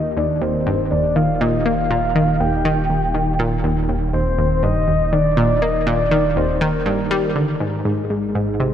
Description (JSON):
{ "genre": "ambient, sequencer-driven space music", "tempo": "121 BPM", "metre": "4/4", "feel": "straight", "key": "unclear", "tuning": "A4 = 440 Hz", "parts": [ { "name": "soft octave-layered synth lead", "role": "melody", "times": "0.0-7.3 s", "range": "Bb4 to G5", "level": "-21 LUFS", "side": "left 1 dB", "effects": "chorus, tape echo" }, { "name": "sweeping resonant pad", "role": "sustained chords", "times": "0.0-8.7 s", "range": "Eb3 to Bb4", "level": "-24 LUFS", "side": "right 2 dB", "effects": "chorus" }, { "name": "warm sub bass", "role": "bass", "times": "0.0-8.7 s", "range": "Eb1 to Ab1", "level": "-26 LUFS", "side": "equal", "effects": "none" }, { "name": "analog pluck", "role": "riff", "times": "0.2-8.7 s", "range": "Eb2 to Bb3", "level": "-20 LUFS", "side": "equal", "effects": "chorus, tape echo" } ], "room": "wet plate reverb, RT60 3.5 s", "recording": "none", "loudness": "-16 LUFS", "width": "side -9 dB against mid", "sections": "0.0-7.6 A section; 7.6-8.7 B section", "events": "none", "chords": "0.0 Eb; 7.6 Ab", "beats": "0.17 0.67 1.16 | 1.66 2.15 2.65 3.15 | 3.64 4.14 4.63 5.13 | 5.62 6.12 6.62 7.11 | 7.61 8.10 8.60" }